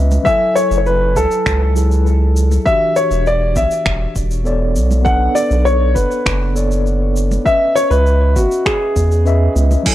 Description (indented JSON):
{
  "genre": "sunset chillout",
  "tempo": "100 BPM",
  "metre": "4/4",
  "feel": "straight",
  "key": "unclear",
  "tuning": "A4 = 440 Hz",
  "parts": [
    { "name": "mellow tine electric piano", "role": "accompaniment", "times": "0.0-9.9 s", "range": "E3 to G#5", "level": "-21 LUFS", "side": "equal", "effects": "medium stereo tremolo, auto-pan, tape echo" },
    { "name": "round analog bass", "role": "bass", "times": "0.0-9.8 s", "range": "E1 to E2", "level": "-14 LUFS", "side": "equal", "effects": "none" },
    { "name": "deep house drum kit", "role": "drums", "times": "0.1-9.9 s", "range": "crash cymbal, finger snaps, hi-hat, shaker", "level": "-24 LUFS", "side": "right 1 dB", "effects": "overdrive" },
    { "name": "congas", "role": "percussion", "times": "0.1-9.8 s", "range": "none", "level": "-27 LUFS", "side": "right 3 dB", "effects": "none" },
    { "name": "dark grand piano", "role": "melody", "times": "0.2-9.5 s", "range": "F#4 to F#5", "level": "-16 LUFS", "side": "left 1 dB", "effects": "tape echo" },
    { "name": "electronic kick drum", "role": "drums", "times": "0.3-9.9 s", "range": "none", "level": "-21 LUFS", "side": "equal", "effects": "overdrive" },
    { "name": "soft string machine", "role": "sustained chords", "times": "9.9 s", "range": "E3 to F#4", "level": "-30 LUFS", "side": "left 2 dB", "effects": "none" }
  ],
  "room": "little or no reverb",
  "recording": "dry, gritty hardware recording, transformer saturation, cassette tape",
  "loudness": "-12 LUFS",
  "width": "side -14 dB against mid",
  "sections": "0.0-9.9 A section",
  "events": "filter sweep on tine electric piano 0.0-9.9",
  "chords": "0.3 F#m9; 2.7 Em9; 4.8 Bm9; 7.5 C#m9",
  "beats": "| 0.26 0.86 1.46 2.06 | 2.66 3.26 3.86 4.46 | 5.06 5.66 6.26 6.86 | 7.46 8.06 8.66 9.26 | 9.86"
}